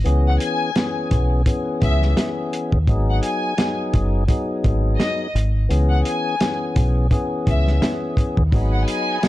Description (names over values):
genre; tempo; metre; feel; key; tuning
hip hop, boom-bap hip-hop; 85 BPM; 4/4; swing 59% on 16ths; unclear; A4 = 440 Hz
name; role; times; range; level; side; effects
tonewheel organ; accompaniment; 0.0-9.3 s; E3 to G#4; -24 LUFS; left 2 dB; slow rotary speaker, cassette tape, high-pass filter, low-pass filter
deep dub fingered electric bass; bass; 0.1-8.8 s; F#1 to D#2; -18 LUFS; equal; none
warm soul drum kit; drums; 0.1-9.3 s; hi-hat, kick drum, snare drum; -21 LUFS; equal; none
rich studio violin section; melody; 0.3-9.3 s; D#5 to G#5; -27 LUFS; left 2 dB; high-pass filter, low-pass filter, digital delay
warm studio string section; sustained chords; 8.5-9.3 s; G#4 to B5; -33 LUFS; equal; high-pass filter, low-pass filter
room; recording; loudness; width
little or no reverb; dark, warm production; -17 LUFS; side -16 dB against mid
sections
0.0-9.3 A section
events
none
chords
0.1 C#m7; 2.9 G#m7; 5.7 C#m7; 8.5 G#m7